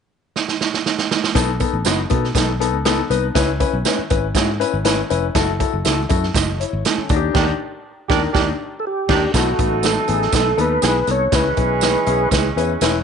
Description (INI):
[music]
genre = uptempo 1960s-style soul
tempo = 120 BPM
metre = 4/4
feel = straight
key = B mixolydian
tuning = A4 = 437 Hz
[part]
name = swinging big-band drum kit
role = drums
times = 0.4-12.9 s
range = crash cymbal, hi-hat, kick drum, snare drum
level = -20 LUFS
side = right 4 dB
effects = none
[part]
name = warm concert grand piano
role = accompaniment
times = 1.3-13.0 s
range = B3 to D#5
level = -21 LUFS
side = left 11 dB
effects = none
[part]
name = fingered electric bass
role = bass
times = 1.4-13.0 s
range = E1 to B2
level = -22 LUFS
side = equal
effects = none
[part]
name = tambourine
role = percussion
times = 1.4-12.9 s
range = none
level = -29 LUFS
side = right 15 dB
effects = none
[part]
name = mellow horn section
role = second line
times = 7.3-13.0 s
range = D#3 to A4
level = -23 LUFS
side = right 11 dB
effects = none
[part]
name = mellow tonewheel organ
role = melody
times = 8.8-12.3 s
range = F#4 to C#5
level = -21 LUFS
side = equal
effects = chorus vibrato, slow rotary speaker
[sound]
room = moderate spring reverb, RT60 1.7 s, small room ambience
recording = 1960s-style stereo with parts hard left and right, nothing above 10.5 kHz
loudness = -16 LUFS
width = side -6 dB against mid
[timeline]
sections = 0.0-1.4 A section; 1.4-9.3 B section; 9.3-13.0 C section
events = drum fill 0.4-1.4; band accent 7.3-9.3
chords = 0.0 N.C.; 1.4 B7; 3.4 C#m7; 5.4 F#m7; 7.1 D#maj7; 9.3 B7; 11.3 C#m7